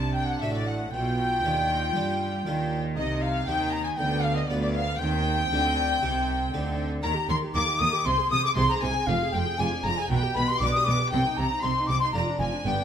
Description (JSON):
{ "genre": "classical, baroque-style concerto movement with solo episodes", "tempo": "118 BPM", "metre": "4/4", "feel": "straight", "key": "C minor", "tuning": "A4 = 437 Hz", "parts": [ { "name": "rich chamber violin section", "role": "melody", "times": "0.0-12.8 s", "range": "D5 to Eb6", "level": "-32 LUFS", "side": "left 4 dB", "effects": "none" }, { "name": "warm chamber violin section", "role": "second line", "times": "0.0-12.8 s", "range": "D5 to Eb6", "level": "-31 LUFS", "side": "left 1 dB", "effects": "none" }, { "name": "harpsichord", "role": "accompaniment", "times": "0.0-12.8 s", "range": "D2 to D5", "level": "-34 LUFS", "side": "right 1 dB", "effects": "none" }, { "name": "warm chamber viola section", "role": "accompaniment", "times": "0.0-12.8 s", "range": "B3 to C5", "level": "-34 LUFS", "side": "right 1 dB", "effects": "none" }, { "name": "rich chamber cello section", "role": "bass", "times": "0.0-12.7 s", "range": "D2 to G3", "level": "-31 LUFS", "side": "right 2 dB", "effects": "none" }, { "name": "rich chamber double bass section", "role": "bass", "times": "0.0-12.7 s", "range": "F1 to G2", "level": "-31 LUFS", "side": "right 2 dB", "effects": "none" }, { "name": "bright baroque flute", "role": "melody", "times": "0.1-12.8 s", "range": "D5 to Eb6", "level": "-29 LUFS", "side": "left 3 dB", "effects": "none" } ], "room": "moderate recital hall reverb, RT60 1.6 s", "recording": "none", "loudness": "-23 LUFS", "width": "side -8 dB against mid", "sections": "0.0-12.8 A section", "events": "none", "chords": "0.0 D7/C; 0.9 G7/B; 3.0 Cm; 4.0 G7/D; 5.0 Cm; 7.0 Eb; 8.1 Ab/C; 9.1 Ddim/F; 10.1 G/B; 11.1 Cm; 12.1 Ddim/F", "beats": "0.42 | 0.93 1.44 1.95 2.46 | 2.97 3.48 3.99 4.50 | 5.00 5.51 6.02 6.53 | 7.04 7.55 8.06 8.57 | 9.08 9.59 10.10 10.61 | 11.12 11.63 12.14 12.66" }